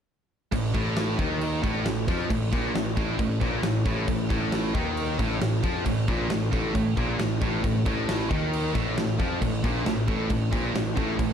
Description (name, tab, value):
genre	heavy metal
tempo	135 BPM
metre	4/4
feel	straight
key	unclear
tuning	A4 = 440 Hz
part	heavy high-gain guitar	riff	0.5-11.3 s	A2 to F3	-30 LUFS	left 11 dB	distortion
part	scooped high-gain guitar	riff	0.5-11.3 s	A2 to F3	-29 LUFS	right 8 dB	distortion
part	fuzz picked electric bass	bass	0.5-11.3 s	A1 to F2	-30 LUFS	equal	overdrive
part	big rock drum kit	drums	0.5-11.3 s	crash cymbal, kick drum, snare drum	-28 LUFS	equal	none
room	light reverb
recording	dark, warm production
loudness	-23 LUFS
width	side -8 dB against mid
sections	0.5-11.3 A section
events	none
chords	none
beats	| 0.52 0.97 1.41 1.86 | 2.30 2.75 3.19 3.64 | 4.08 4.53 4.97 5.42 | 5.86 6.30 6.75 7.19 | 7.64 8.08 8.53 8.97 | 9.41 9.86 10.30 10.74 | 11.19